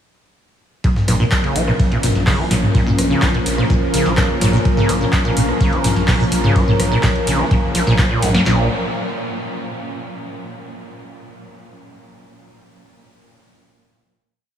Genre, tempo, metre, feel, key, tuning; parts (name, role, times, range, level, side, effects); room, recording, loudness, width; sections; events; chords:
acid house; 126 BPM; 4/4; straight; Bb minor pentatonic; A4 = 439 Hz
lush unison pad; sustained chords; 0.8-8.7 s; F3 to Bb4; -22 LUFS; equal; chorus, phaser, sidechain pumping
acid bass, saw; riff; 0.8-8.7 s; Ab2 to Bb3; -20 LUFS; equal; overdrive, lush chorus, sidechain pumping, analog delay
booming analog drum machine; drums; 0.8-8.6 s; handclaps, kick drum, snare drum; -17 LUFS; equal
breakbeat sampler-style drum kit; drums; 0.8-8.3 s; hi-hat, ride cymbal, snare drum; -32 LUFS; right 2 dB
booming analog drum machine; drums; 1.0-8.4 s; handclaps, hi-hat, rim click, snare drum, toms; -21 LUFS; equal
saturated sub bass; bass; 1.1-8.7 s; Bb1; -22 LUFS; equal; sidechain pumping
moderate huge ambient reverb, RT60 7.7 s; dreamy mix soaked in reverb, studio reverb; -14 LUFS; side -9 dB against mid
0.8-8.5 drop; 8.5-10.4 final chord
drop 0.8-8.5
0.8 Bbm; 8.5 N.C.